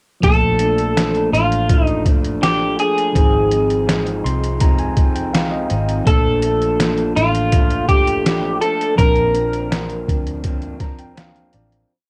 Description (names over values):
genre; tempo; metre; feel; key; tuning
indie pop, bedroom pop; 82 BPM; 4/4; straight; Bb major; A4 = 440 Hz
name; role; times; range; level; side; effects
electric guitar through a small old amp; melody; 0.2-11.1 s; F4 to Bb4; -21 LUFS; equal; lush chorus, cassette tape
electric guitar through a small old amp; accompaniment; 0.2-11.9 s; Ab2 to Eb4; -27 LUFS; equal; lush chorus, warbly pitch drift
tine electric piano; accompaniment; 0.2-11.9 s; F3 to C6; -27 LUFS; equal; cassette tape
vintage muted fingered electric bass; bass; 0.2-11.8 s; Ab1 to D2; -25 LUFS; equal; none
trip hop sampler-style drum kit; drums; 0.2-11.9 s; hi-hat, kick drum, snare drum; -20 LUFS; equal; none
room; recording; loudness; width
light reverb; home recording on cassette; -17 LUFS; mono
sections
0.2-11.9 A section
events
tine electric piano fill 3.9-6.1, 10.4-11.9; fade-out 9.0-11.9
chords
0.2 Bbmaj7; 3.2 Ab6; 6.1 Bbmaj7; 9.0 Bbadd9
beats
| 0.23 0.96 1.69 2.42 | 3.15 3.88 4.61 5.34 | 6.07 6.80 7.53 8.26 | 8.99 9.72 10.45 11.18